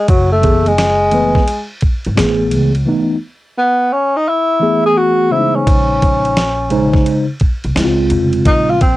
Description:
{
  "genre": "hip hop, jazz-hop",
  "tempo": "86 BPM",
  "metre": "4/4",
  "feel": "swing 66% on 16ths",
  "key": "unclear",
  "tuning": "A4 = 439 Hz",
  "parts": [
    { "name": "breathy tenor saxophone", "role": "melody", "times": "0.0-9.0 s", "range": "Gb3 to Ab4", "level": "-13 LUFS", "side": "left 1 dB", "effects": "cassette tape" },
    { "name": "upright bass", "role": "bass", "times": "0.1-9.0 s", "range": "F1 to Db2", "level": "-18 LUFS", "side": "equal", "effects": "transformer saturation" },
    { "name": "dusty soul sampler-style drum kit", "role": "drums", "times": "0.1-9.0 s", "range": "hi-hat, kick drum, ride cymbal, snare drum", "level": "-16 LUFS", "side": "equal", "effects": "none" },
    { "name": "mellow tine electric piano", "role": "accompaniment", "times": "0.4-8.8 s", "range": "C3 to C5", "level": "-15 LUFS", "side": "equal", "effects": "medium stereo tremolo, cassette tape" }
  ],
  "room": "light reverb",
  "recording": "home recording on cassette",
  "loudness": "-11 LUFS",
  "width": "side -17 dB against mid",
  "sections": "0.0-9.0 A section",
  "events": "tenor saxophone solo 0.0-9.0; drums muted 2.9-5.7",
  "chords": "0.1 Gbm11; 5.7 Bbm11",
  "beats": "| 0.09 0.79 1.49 2.18 | 2.88 3.58 4.28 4.97 | 5.67 6.37 7.07 7.76 | 8.46"
}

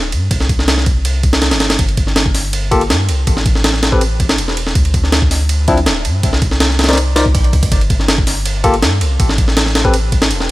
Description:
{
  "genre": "drum and bass, jungle",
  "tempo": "162 BPM",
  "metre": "4/4",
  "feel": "straight",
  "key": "unclear",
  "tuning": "A4 = 440 Hz",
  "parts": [
    { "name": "soft dub sub bass", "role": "bass", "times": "0.0-10.5 s", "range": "D1 to G2", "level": "-16 LUFS", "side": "equal", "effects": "none" },
    { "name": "breakbeat sampler-style drum kit", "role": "drums", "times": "0.1-10.5 s", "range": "hi-hat, kick drum, ride cymbal, snare drum", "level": "-13 LUFS", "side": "equal", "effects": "none" },
    { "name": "barky tine electric piano", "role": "stabs", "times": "2.7-9.9 s", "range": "F3 to D5", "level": "-19 LUFS", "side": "left 2 dB", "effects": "dub echo" }
  ],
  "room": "little or no reverb",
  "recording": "none",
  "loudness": "-11 LUFS",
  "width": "side -18 dB against mid",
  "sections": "0.0-10.5 A section",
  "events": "none",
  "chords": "0.3 C5; 1.8 N.C.; 3.3 A5; 4.8 N.C.; 6.2 C7sus2; 7.7 N.C.; 9.2 A5",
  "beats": "| 0.31 0.68 1.05 1.42 | 1.79 2.16 2.53 2.90 | 3.27 3.64 4.01 4.38 | 4.75 5.12 5.49 5.87 | 6.24 6.61 6.98 7.35 | 7.72 8.09 8.46 8.83 | 9.20 9.57 9.94 10.31"
}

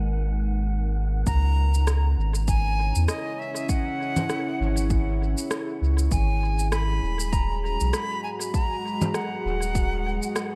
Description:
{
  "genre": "ambient dub",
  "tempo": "99 BPM",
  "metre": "4/4",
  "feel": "swing 57% on 16ths",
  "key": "C# dorian",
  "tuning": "A4 = 439 Hz",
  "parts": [
    { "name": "deep dark ambient pad", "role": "sustained chords", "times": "0.0-10.6 s", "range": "G#3 to F#5", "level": "-34 LUFS", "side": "equal", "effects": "chorus, built-in reverb" },
    { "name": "soft dub sub bass", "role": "bass", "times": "0.0-10.2 s", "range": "D#1 to E2", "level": "-26 LUFS", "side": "equal", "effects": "none" },
    { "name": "wind-like tuned noise texture", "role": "texture", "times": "0.0-1.3 s", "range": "F#5", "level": "-47 LUFS", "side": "equal", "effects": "built-in reverb" },
    { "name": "bright silver concert flute", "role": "melody", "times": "1.3-10.6 s", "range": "D#5 to B5", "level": "-34 LUFS", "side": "equal", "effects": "dub echo" },
    { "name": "electronic kick drum", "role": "drums", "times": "1.3-9.9 s", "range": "none", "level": "-27 LUFS", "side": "equal", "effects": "overdrive" },
    { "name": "electronic shaker, rim click and congas", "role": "drums", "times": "1.3-10.5 s", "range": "none", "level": "-34 LUFS", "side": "equal", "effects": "dub echo" }
  ],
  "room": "light reverb",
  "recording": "none",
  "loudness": "-25 LUFS",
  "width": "mono",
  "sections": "0.0-1.3 A section; 1.3-10.6 B section",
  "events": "none",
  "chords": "0.0 G#m9; 1.3 C#m7; 6.1 G#m9",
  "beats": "0.05 0.66 | 1.26 1.87 2.48 3.08 | 3.69 4.29 4.90 5.51 | 6.11 6.72 7.33 7.93 | 8.54 9.14 9.75 10.36"
}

